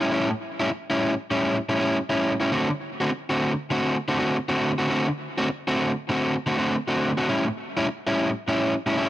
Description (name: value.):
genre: blues.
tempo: 100 BPM.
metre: 4/4.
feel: swing 63% on 8ths.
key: unclear.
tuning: A4 = 440 Hz.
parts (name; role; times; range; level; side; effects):
overdriven electric guitar; solo; 0.0-9.1 s; A2 to F#4; -22 LUFS; equal; analog delay.
room: light reverb.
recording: none.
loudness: -22 LUFS.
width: side -14 dB against mid.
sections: 0.0-9.1 A section.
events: none.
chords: 0.0 A7; 2.5 D7; 7.3 A7.